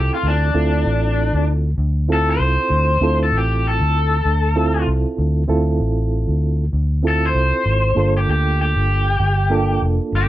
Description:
straight-eighth soul blues; 97 BPM; 4/4; swing 55% on 16ths; D minor; A4 = 440 Hz
raw garage guitar; melody; 0.0-10.3 s; D4 to C5; -20 LUFS; left 1 dB; overdrive
mellow reed electric piano; accompaniment; 0.0-10.3 s; Bb3 to A4; -23 LUFS; right 4 dB; fast tremolo
vintage muted fingered electric bass; bass; 0.0-10.3 s; F1 to D2; -18 LUFS; equal
light reverb; nothing above 10.8 kHz; -16 LUFS; side -14 dB against mid
0.0-10.3 A section
overdriven electric guitar solo 0.0-10.3
0.0 Dm7; 8.0 Gm7

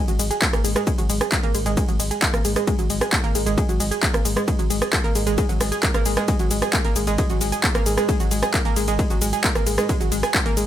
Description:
driving peak-time techno; 133 BPM; 4/4; straight; A4 = 437 Hz
analog pluck; riff; 0.0-10.6 s; F#3 to G#4; -24 LUFS; right 1 dB; chorus, sidechain pumping, digital delay
saturated sub bass; bass; 0.1-10.7 s; G#1; -27 LUFS; equal; tube saturation, sidechain pumping, low-pass filter
techno drum kit; drums; 0.1-10.7 s; handclaps, hi-hat, ride cymbal, rim click, shaker; -24 LUFS; equal; overdrive, sidechain pumping on hats, sidechain pumping on perc, sidechain pumping on cymbals
electronic kick drum; drums; 0.4-10.4 s; -22 LUFS; equal; overdrive
light reverb; -18 LUFS; side -11 dB against mid
0.0-10.7 A section
0.0 G#7sus2

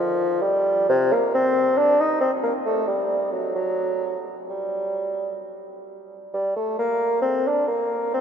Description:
classical, baroque-style fantasia for unaccompanied bassoon; 66 BPM; 3/4; rubato; G minor; A4 = 440 Hz
mellow bassoon; solo; 0.0-8.2 s; C3 to Eb4; -20 LUFS; equal
wet cathedral reverb, RT60 6.0 s; in a vast, echoing space; -20 LUFS; side -7 dB against mid
0.0-8.2 A section

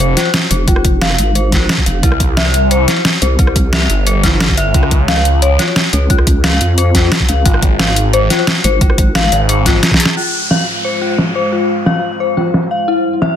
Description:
dark technical drum and bass; 177 BPM; 4/4; straight; A4 = 440 Hz
dark detuned synth bell; arpeggios; 0.0-13.3 s; E4 to F5; -17 LUFS; left 3 dB; chorus, phaser, sidechain pumping, digital delay
phased detuned saw bass; bass; 0.0-9.8 s; F1 to Db2; -14 LUFS; equal; phaser, sidechain pumping
dubstep drum kit; drums; 0.0-13.3 s; hi-hat, rim click, snare drum; -15 LUFS; equal; overdrive, low-pass filter on snare, low-pass filter on hats
vowel-sweep wobble bass; bass; 0.5-3.9, 5.9-9.3 s; F1 to F2; -14 LUFS; equal; chorus
electronic kick drum; drums; 0.7-10.0 s; -13 LUFS; equal; overdrive
dark analog pad; sustained chords; 10.4-13.4 s; G3 to F5; -22 LUFS; right 1 dB; chorus, sidechain pumping
downlifter; sound effects; 10.2-12.9 s; -22 LUFS; equal
light reverb, digital ambience; dense, heavily limited modern master; -10 LUFS; side -9 dB against mid
0.0-10.2 A section; 10.2-13.4 B section
drum fill 9.8-10.2
0.0 Fm; 2.0 C; 4.7 Db; 7.5 Ab6

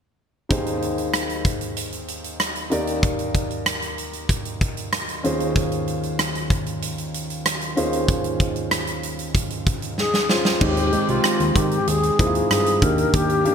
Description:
1980s-style pop; 95 BPM; 4/4; straight; A4 = 439 Hz
dark baby grand piano; accompaniment; 0.5-13.5 s; Eb2 to D5; -24 LUFS; equal
big rock drum kit; drums; 0.5-13.5 s; crash cymbal, hi-hat, kick drum, rim click, snare drum; -23 LUFS; right 1 dB
breathy mellow alto flute; melody; 10.0-13.5 s; F4 to Bb4; -22 LUFS; left 3 dB; ping-pong delay
fat analog bass; bass; 10.6-13.5 s; C2 to Eb3; -24 LUFS; equal
moderate lush hall reverb, RT60 1.9 s, studio reverb; bright 1980s-style digital production; -20 LUFS; side -7 dB against mid
0.5-10.6 A section; 10.6-13.5 B section
drum fill 10.0-10.6
0.5 Abmaj7/Eb; 2.7 Ebmaj7; 5.2 Dbmaj7/Eb; 10.6 Abmaj7; 12.8 Ebmaj7

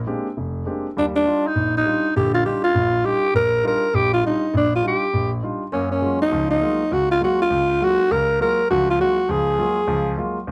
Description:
jazz; 202 BPM; 4/4; swing 60% on 8ths; Eb major; A4 = 441 Hz
warm concert grand piano; accompaniment; 0.0-10.5 s; E#1 to G4; -26 LUFS; equal
growling alto saxophone; melody; 1.0-10.2 s; Db4 to Bb4; -21 LUFS; equal
moderate small room ambience, RT60 0.5 s; -20 LUFS; mono
1.0-10.5 A section
0.0 A#13; 1.0 Ebmaj9; 5.7 Gbmaj9

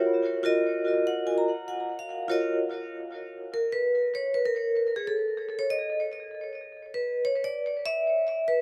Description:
hip hop; 97 BPM; 4/4; swing 64% on 16ths; Eb minor; A4 = 435 Hz
vibraphone with medium hard mallets; solo; 0.0-8.6 s; F4 to Bb5; -28 LUFS; equal; tape echo
light reverb; echo-heavy mix; -28 LUFS; mono
0.0-2.6 A section; 2.6-8.6 B section
vibraphone fill 0.8-2.6; vibraphone solo 2.6-8.6
0.0 Ebm9; 2.6 N.C.

